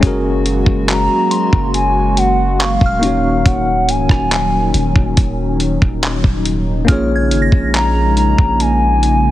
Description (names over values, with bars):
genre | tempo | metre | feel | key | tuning
contemporary R&B | 70 BPM | 4/4 | straight | Eb dorian | A4 = 440 Hz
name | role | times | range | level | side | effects
mellow tine electric piano | accompaniment | 0.0-9.3 s | Ab3 to Db5 | -20 LUFS | left 2 dB | medium stereo tremolo
hollow soft pad | sustained chords | 0.0-9.3 s | Db3 to Gb4 | -20 LUFS | left 1 dB | chorus, sidechain pumping
long sustained 808-style bass | bass | 0.0-9.3 s | Db1 to Bb1 | -18 LUFS | equal | none
dusty soul sampler-style drum kit | drums | 0.0-9.2 s | handclaps, hi-hat, kick drum, rim click | -15 LUFS | equal | vintage 12-bit sampler grit
hollow clarinet-like synth lead | melody | 0.9-9.3 s | F5 to Bb5 | -17 LUFS | equal | chorus
soft synth bell | texture | 1.3-9.3 s | C6 to Bb6 | -26 LUFS | right 2 dB | chorus, tape echo
room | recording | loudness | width
little or no reverb | heavily compressed radio sound, multiband compression | -12 LUFS | side -14 dB against mid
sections
0.0-9.3 A section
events
none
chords
0.0 Gbadd9; 3.0 Ebm9; 6.9 Bbm7